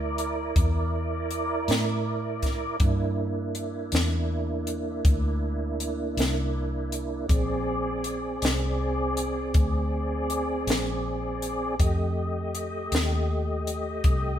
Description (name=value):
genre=slow blues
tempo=53 BPM (dotted quarters)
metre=12/8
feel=straight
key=unclear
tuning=A4 = 440 Hz
part: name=tonewheel organ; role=sustained chords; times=0.0-14.4 s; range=A3 to Eb5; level=-29 LUFS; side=right 1 dB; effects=slow rotary speaker, chorus vibrato
part: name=vintage muted fingered electric bass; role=bass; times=0.0-14.4 s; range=Bb1 to A2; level=-29 LUFS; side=equal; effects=none
part: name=compact cocktail drum kit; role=drums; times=0.2-14.2 s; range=hi-hat, kick drum, snare drum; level=-25 LUFS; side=equal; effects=none
room=moderate stone room reverb, RT60 1.0 s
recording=band playing live in one room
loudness=-24 LUFS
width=side -10 dB against mid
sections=0.0-14.4 A section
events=none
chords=0.0 C9; 7.3 Bb9; 11.8 F9